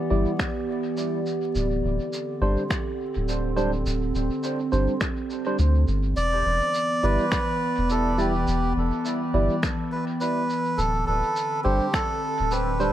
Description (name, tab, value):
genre	ambient dub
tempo	104 BPM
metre	4/4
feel	swing 60% on 16ths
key	E minor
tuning	A4 = 440 Hz
part	warbly tape-like pad	sustained chords	0.0-12.9 s	D3 to D5	-28 LUFS	right 1 dB	chorus, built-in reverb
part	barky tine electric piano	stabs	0.1-12.9 s	G3 to D5	-30 LUFS	right 1 dB	wide subtle chorus, low-pass filter, dub echo
part	soft dub sub bass	bass	0.1-12.9 s	D1 to D2	-24 LUFS	equal	none
part	electronic finger snaps and shaker	drums	0.4-12.9 s	none	-34 LUFS	equal	dub echo
part	electronic kick drum	drums	0.4-12.1 s	none	-28 LUFS	equal	none
part	melodica	melody	6.2-12.9 s	G4 to D5	-25 LUFS	right 1 dB	dub echo
room	light reverb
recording	echo-heavy mix, vinyl crackle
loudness	-22 LUFS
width	side -12 dB against mid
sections	0.0-12.9 A section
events	none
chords	0.0 Em7; 1.6 D7sus4; 6.2 Em7; 10.8 D7sus4